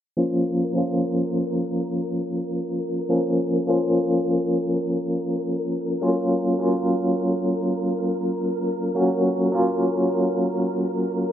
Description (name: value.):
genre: trip hop.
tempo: free time.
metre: none.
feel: none.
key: Bb minor.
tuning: A4 = 439 Hz.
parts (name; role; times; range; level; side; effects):
barky tine electric piano; accompaniment; 0.2-11.3 s; F3 to Bb4; -21 LUFS; equal; overdrive, tremolo, low-pass filter, tape echo.
flickering grainy texture; texture; 0.5-11.3 s; Bb4; -30 LUFS; equal; built-in reverb.
room: moderate plate reverb, RT60 3.0 s.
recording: low-pass filter.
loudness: -21 LUFS.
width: side -10 dB against mid.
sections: 0.2-11.3 A section.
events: filter sweep on tine electric piano 0.2-11.3; filter sweep 0.2-11.3.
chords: 0.2 Bbm; 6.0 Gbmaj7.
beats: free time.